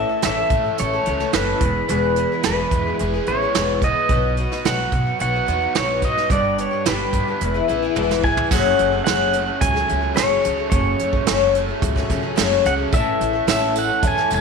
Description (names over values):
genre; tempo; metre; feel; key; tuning
folk rock and heartland rock; 109 BPM; 4/4; straight; unclear; A4 = 440 Hz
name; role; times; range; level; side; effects
pedal steel guitar; melody; 0.0-14.4 s; B4 to A5; -22 LUFS; right 1 dB; none
picked twelve-string acoustic guitar; accompaniment; 0.0-14.4 s; E2 to A4; -23 LUFS; left 12 dB; none
overdriven electric guitar; riff; 0.0-14.4 s; E2 to A4; -28 LUFS; right 12 dB; none
upright bass; bass; 0.0-14.4 s; E1 to B2; -26 LUFS; equal; none
soft brush drum kit; drums; 0.2-14.4 s; crash cymbal, hi-hat, kick drum, snare drum, toms; -23 LUFS; right 3 dB; none
dark upright piano; accompaniment; 12.9-14.4 s; A4 to F#5; -32 LUFS; right 10 dB; none
tambourine; percussion; 12.9-14.4 s; none; -34 LUFS; right 13 dB; none
room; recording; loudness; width
moderate echo chamber reverb, RT60 1.4 s, studio reverb; 1960s-style stereo with parts hard left and right; -17 LUFS; side -5 dB against mid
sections
0.0-8.5 A section; 8.5-14.4 B section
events
drum fill 8.0-8.5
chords
0.0 A; 1.6 E; 4.1 B; 6.3 G; 7.4 E; 8.5 F#madd9; 12.9 A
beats
0.23 0.79 1.34 | 1.89 2.44 3.00 3.55 | 4.10 4.65 5.21 5.76 | 6.31 6.86 7.41 7.96 | 8.52 9.07 9.62 10.17 | 10.72 11.28 11.83 12.38 | 12.93 13.48 14.04